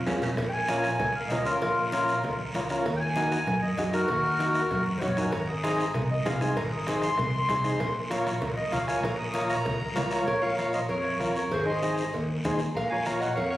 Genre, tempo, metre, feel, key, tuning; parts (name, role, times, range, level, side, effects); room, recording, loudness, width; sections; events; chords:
latin, cumbia; 194 BPM; 4/4; straight; Bb minor; A4 = 440 Hz
accordion; melody; 0.0-13.6 s; F4 to Eb6; -29 LUFS; equal; tape echo
electric guitar at the edge of break-up; second line; 0.0, 10.3-13.6 s; Ab4 to F5; -33 LUFS; equal
combo organ; accompaniment; 0.1-13.3 s; Db4 to Db5; -31 LUFS; left 1 dB
fingered electric bass; bass; 0.1-13.6 s; Ab1 to Gb2; -32 LUFS; equal
bombo; percussion; 0.1-13.2 s; -38 LUFS; equal
guiro; percussion; 0.1-13.6 s; -40 LUFS; left 1 dB
timbales and cowbell; percussion; 0.1-13.5 s; -36 LUFS; right 2 dB
congas; percussion; 0.2-13.2 s; -37 LUFS; right 1 dB
light reverb; recorded on a phone in the room, studio reverb; -25 LUFS; side -15 dB against mid
0.4-10.3 A section; 10.3-13.6 B section
drum fill 0.0-0.4, 4.9-5.3; accordion solo 0.4-10.3
0.4 Bbm; 2.9 Ebm; 5.3 Ab; 7.8 Bbm; 11.5 Ab; 12.8 Bbm